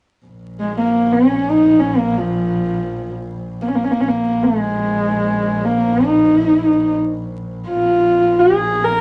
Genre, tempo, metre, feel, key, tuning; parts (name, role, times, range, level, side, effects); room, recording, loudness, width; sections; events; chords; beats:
mongolian traditional; free time; Bb yu mode; A4 = 439 Hz
rich double bass; drone; 0.3-9.0 s; Bb1; -27 LUFS; equal
warm horsehead fiddle; melody; 0.6-9.0 s; F3 to Bb4; -17 LUFS; equal
wet club ambience, RT60 0.5 s; vinyl crackle, nothing above 10.7 kHz; -16 LUFS; mono
0.3-9.0 A section
free time